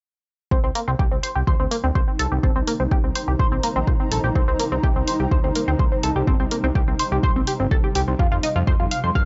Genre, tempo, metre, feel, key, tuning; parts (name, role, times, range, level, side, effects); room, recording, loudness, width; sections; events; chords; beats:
melodic techno; 125 BPM; 4/4; straight; C minor; A4 = 441 Hz
tight sequenced synth; arpeggios; 0.5-9.2 s; Bb3 to F5; -27 LUFS; equal; chorus, phaser, cassette tape, sidechain pumping, analog delay
fat analog bass; bass; 0.5-9.2 s; G1 to G2; -26 LUFS; equal; sidechain pumping
swarming drone; drone; 1.8-9.3 s; C3 to G3; -37 LUFS; equal
electronic kick drum; drums; 0.5-9.3 s; -23 LUFS; equal; overdrive
granular cloud pad; texture; 2.1-9.3 s; Eb4 to Bb5; -32 LUFS; equal; built-in reverb, sidechain pumping
electronic hi-hat; drums; 0.8-9.0 s; -30 LUFS; equal
little or no reverb; dry, gritty hardware recording, cassette tape, nothing above 7.7 kHz; -21 LUFS; mono
0.5-9.3 A section
0.5 Cm7; 8.2 F7
| 0.51 0.99 1.47 1.95 | 2.43 2.91 3.39 3.87 | 4.35 4.83 5.31 5.79 | 6.27 6.75 7.23 7.71 | 8.19 8.67 9.15